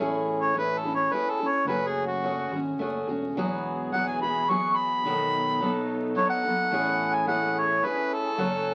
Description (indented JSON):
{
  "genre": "acoustic folk duo or small band",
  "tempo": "107 BPM",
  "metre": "3/4",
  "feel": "straight",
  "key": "unclear",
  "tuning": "A4 = 440 Hz",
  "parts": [
    { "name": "picked steel-string acoustic guitar", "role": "accompaniment", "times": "0.0-8.7 s", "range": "B2 to A4", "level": "-31 LUFS", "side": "equal", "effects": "none" },
    { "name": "fingered electric bass", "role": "bass", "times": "0.0-8.7 s", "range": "E1 to B1", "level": "-42 LUFS", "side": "equal", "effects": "none" },
    { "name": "warm harmonica", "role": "melody", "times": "0.4-8.7 s", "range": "F#4 to C#6", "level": "-28 LUFS", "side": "equal", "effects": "none" },
    { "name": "muted chamber string section", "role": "sustained chords", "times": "3.3-8.7 s", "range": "E3 to G#5", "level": "-40 LUFS", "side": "equal", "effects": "none" }
  ],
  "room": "moderate club reverb, RT60 0.5 s",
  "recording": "very old 78 rpm record, vinyl crackle",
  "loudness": "-26 LUFS",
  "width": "mono",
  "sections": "0.0-8.7 A section",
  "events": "harmonica solo 0.0-8.7",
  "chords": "0.0 Amaj7; 1.7 F#madd9; 3.4 Eadd9; 5.0 B7; 6.7 Amaj7"
}